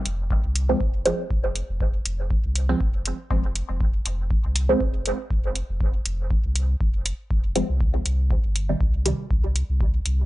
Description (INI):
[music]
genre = dub techno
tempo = 120 BPM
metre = 4/4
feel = swing 55% on 16ths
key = F minor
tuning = A4 = 440 Hz
[part]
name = warm sub bass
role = bass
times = 0.1-10.3 s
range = F1 to C2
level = -25 LUFS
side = equal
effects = tube saturation, sidechain pumping
[part]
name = electronic hi-hat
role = drums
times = 0.1-10.2 s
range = none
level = -27 LUFS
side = equal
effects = overdrive
[part]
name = electronic kick drum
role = drums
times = 0.3-9.9 s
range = none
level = -24 LUFS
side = equal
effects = none
[part]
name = filtered dub chord stab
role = stabs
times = 0.7-9.2 s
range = C3 to C4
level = -25 LUFS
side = right 1 dB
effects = phaser, sidechain pumping, dub echo
[sound]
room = little or no reverb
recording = dry, gritty hardware recording, nothing above 10.4 kHz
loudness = -21 LUFS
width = side -17 dB against mid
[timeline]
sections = 0.0-10.3 A section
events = none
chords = 0.0 F5; 7.8 Cm